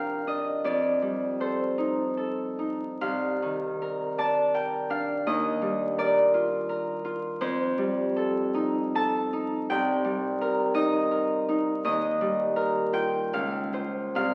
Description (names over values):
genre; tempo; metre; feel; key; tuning
classical, solo harp piece; 68-85 BPM; 3/4; rubato; C dorian; A4 = 439 Hz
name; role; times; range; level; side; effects
Celtic harp; solo; 0.0-14.3 s; C2 to A5; -27 LUFS; equal; none
room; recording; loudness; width
wet recital hall reverb, RT60 1.4 s; very old 78 rpm record, vinyl crackle; -27 LUFS; mono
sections
0.0-14.3 A section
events
none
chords
0.0 Cm11; 0.7 F9; 3.0 Cm11; 5.3 Ebmaj9; 7.4 F13; 9.7 Cm7; 11.9 Ebadd9; 13.3 Dbmaj7